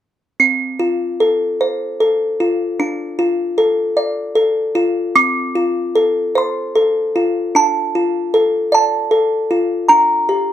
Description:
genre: children's music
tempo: 51 BPM (dotted quarters)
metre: 6/8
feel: rubato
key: F major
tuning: A4 = 440 Hz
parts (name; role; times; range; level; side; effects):
- music box; melody; 0.4-10.5 s; C4 to D6; -14 LUFS; equal; none
room: light reverb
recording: dry, close 1970s-style studio recording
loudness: -14 LUFS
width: side -11 dB against mid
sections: 0.4-5.1 A section; 5.1-10.5 B section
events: none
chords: 0.4 F; 2.8 Dm; 5.1 F; 7.5 Dm; 9.9 Gm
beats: | 0.39 1.60 | 2.79 3.96 | 5.15 6.35 | 7.54 8.72 | 9.89

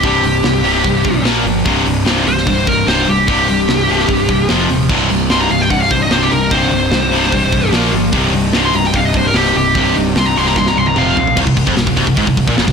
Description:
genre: heavy metal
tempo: 148 BPM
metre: 4/4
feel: straight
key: C minor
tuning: A4 = 440 Hz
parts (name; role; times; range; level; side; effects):
- high-gain lead guitar; melody; 0.0-11.4 s; G4 to C6; -16 LUFS; equal; distortion
- crunchy overdriven guitar; riff; 0.0-12.7 s; C2 to Bb3; -20 LUFS; equal; none
- distorted electric guitar; riff; 0.0-12.7 s; C2 to Bb3; -19 LUFS; left 12 dB; overdrive
- high-gain distorted guitar; riff; 0.0-12.7 s; C2 to Bb3; -19 LUFS; right 9 dB; distortion
- picked electric bass; bass; 0.0-12.7 s; C1 to C2; -20 LUFS; equal; none
- tight metal drum kit; drums; 0.0-12.7 s; crash cymbal, hi-hat, kick drum, snare drum, toms; -19 LUFS; equal; soft clipping on kick
- clear studio string section; sustained chords; 4.9-11.4 s; C3 to G4; -28 LUFS; equal; none
room: studio ambience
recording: blown-out, overdriven recording, overdrive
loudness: -11 LUFS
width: side -6 dB against mid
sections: 0.0-11.4 A section; 11.4-12.7 B section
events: lead electric guitar solo 0.0-11.4; drum fill 10.6-11.4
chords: 0.0 C5; 1.3 Bb5; 1.7 C5; 4.5 F5; 4.9 Cm; 7.7 Bb5; 8.1 Cm; 11.0 F5; 11.4 N.C.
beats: | 0.04 0.44 0.85 1.25 | 1.66 2.06 2.47 2.87 | 3.28 3.68 4.09 4.49 | 4.90 5.30 5.71 6.11 | 6.51 6.92 7.32 7.73 | 8.13 8.54 8.94 9.35 | 9.75 10.15 10.56 10.96 | 11.37 11.77 12.17 12.58

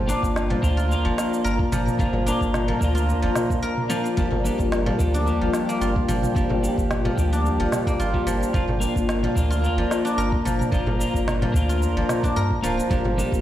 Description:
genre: organic downtempo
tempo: 110 BPM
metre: 4/4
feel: swing 54% on 16ths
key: G minor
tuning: A4 = 440 Hz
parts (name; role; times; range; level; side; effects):
- ethereal airy pad; sustained chords; 0.0-13.4 s; F4 to Bb5; -29 LUFS; left 1 dB; ensemble chorus, built-in reverb, sidechain pumping
- guzheng; arpeggios; 0.0-13.4 s; F3 to Bb4; -28 LUFS; right 1 dB; digital delay
- warm sub bass; bass; 0.0-13.4 s; D1 to G2; -25 LUFS; equal; sidechain pumping
- twelve-string electric guitar; accompaniment; 0.1-13.4 s; F3 to G4; -26 LUFS; left 2 dB; sidechain pumping, digital delay
- organic electronic drum kit; drums; 0.1-13.4 s; shaker, snare drum, toms; -31 LUFS; right 1 dB; none
- electronic kick drum; drums; 0.2-13.4 s; none; -25 LUFS; equal; none
- frame drum; percussion; 0.5-13.2 s; none; -31 LUFS; left 1 dB; none
room: moderate echo chamber reverb, RT60 2.3 s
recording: played on a big sound system in a bare room, stone room reverb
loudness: -20 LUFS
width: side -12 dB against mid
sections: 0.0-13.4 A section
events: break 3.6-4.2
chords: 0.0 Gm7; 8.5 Bb/G; 12.9 Gm7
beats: 0.36 0.90 1.45 | 2.00 2.54 3.08 3.63 | 4.18 4.72 5.27 5.81 | 6.36 6.90 7.45 8.00 | 8.54 9.09 9.63 10.18 | 10.72 11.27 11.81 12.36 | 12.90

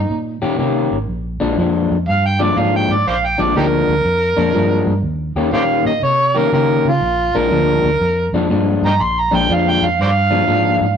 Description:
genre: electric blues shuffle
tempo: 121 BPM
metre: 4/4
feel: swing 66% on 8ths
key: Bb mixolydian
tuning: A4 = 440 Hz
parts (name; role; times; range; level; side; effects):
- overdriven harmonica; melody; 0.0-11.0 s; Eb4 to C6; -16 LUFS; right 2 dB; none
- vintage muted fingered electric bass; bass; 0.0-10.9 s; Ab1 to Db3; -20 LUFS; right 2 dB; none
- electric guitar at the edge of break-up; riff; 0.4-10.9 s; Bb2 to G4; -18 LUFS; left 4 dB; none
room: moderate stone room reverb, RT60 1.0 s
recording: rough rehearsal-room recording, tube saturation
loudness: -14 LUFS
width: side -7 dB against mid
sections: 0.0-11.0 A section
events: harmonica solo 0.0-11.0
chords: 0.0 Eb7; 1.1 Bb7; 5.0 Eb7; 7.0 Bb7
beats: 0.09 0.58 | 1.08 1.57 2.07 2.56 | 3.06 3.55 4.05 4.54 | 5.04 5.53 6.03 6.52 | 7.02 7.51 8.00 8.50 | 8.99 9.49 9.98 10.47

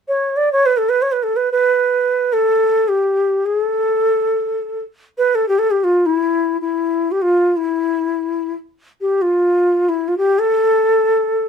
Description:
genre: indian classical, Hindustani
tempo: free time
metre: none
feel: none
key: A raga charukeshi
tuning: A4 = 440 Hz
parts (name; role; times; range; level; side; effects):
- breathy bansuri; solo; 0.1-11.5 s; E4 to D5; -14 LUFS; equal; none
room: light reverb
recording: minimal, uncompressed stereo recording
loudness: -14 LUFS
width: side -6 dB against mid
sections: 0.0-11.5 A section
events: none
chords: none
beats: free time

